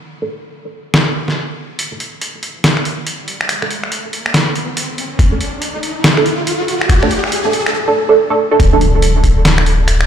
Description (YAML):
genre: deep dubstep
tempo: 141 BPM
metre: 4/4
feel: swing 61% on 16ths, half-time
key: unclear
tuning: A4 = 441 Hz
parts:
  - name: filtered dub chord stab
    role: stabs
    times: 0.2-8.8 s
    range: A3 to A4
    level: -16 LUFS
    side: right 4 dB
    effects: phaser, ensemble chorus, dub echo
  - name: trip hop sampler-style drum kit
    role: drums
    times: 0.9-10.1 s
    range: finger snaps, hi-hat, snare drum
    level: -16 LUFS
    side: equal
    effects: none
  - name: soft dub sub bass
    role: bass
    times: 1.8-10.1 s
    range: D1 to C2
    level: -14 LUFS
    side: equal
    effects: high-pass filter
  - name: riser and impact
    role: sound effects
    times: 3.5-10.1 s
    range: none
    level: -20 LUFS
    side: left 1 dB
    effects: none
  - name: electronic kick drum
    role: drums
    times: 5.2-9.3 s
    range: none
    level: -14 LUFS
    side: equal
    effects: none
room: light reverb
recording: played on a big sound system in a bare room, large studio reverb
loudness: -13 LUFS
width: side -9 dB against mid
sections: 0.0-1.8 A section; 1.8-8.6 B section; 8.6-10.1 C section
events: build-up 1.8-8.6; filter sweep on synth stab 1.8-8.6; riser 3.5-7.7; drop 8.6-10.1; impact 8.6-10.1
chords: 0.0 D5